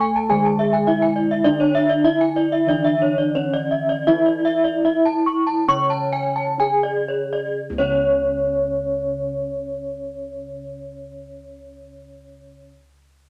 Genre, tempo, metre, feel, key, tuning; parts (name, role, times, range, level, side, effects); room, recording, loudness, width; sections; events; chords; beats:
Balinese gamelan; 57-104 BPM; 4/4; straight; C# pelog; A4 = 440 Hz
gamelan-type bronze metallophone; melody; 0.0-12.7 s; C#4 to C#5; -24 LUFS; equal
gamelan-type bronze metallophone; accompaniment; 0.0-12.7 s; C#3 to C#4; -32 LUFS; equal
gamelan-type bronze metallophone; arpeggios; 0.0-12.7 s; C#5 to C#6; -24 LUFS; equal
gamelan-type bossed gongs; bass; 0.0-12.6 s; C#2 to A4; -34 LUFS; equal
gamelan-type bronze metallophone; arpeggios; 0.2-12.7 s; C#5 to A5; -26 LUFS; equal
wet studio reverb, RT60 0.6 s; -20 LUFS; mono
0.0-7.6 A section; 7.6-11.8 B section
slowing down 1.5-7.6
0.30 0.88 | 1.46 2.05 2.68 3.35 | 4.07 4.84 5.68 6.59 | 7.59 8.64 9.69 10.74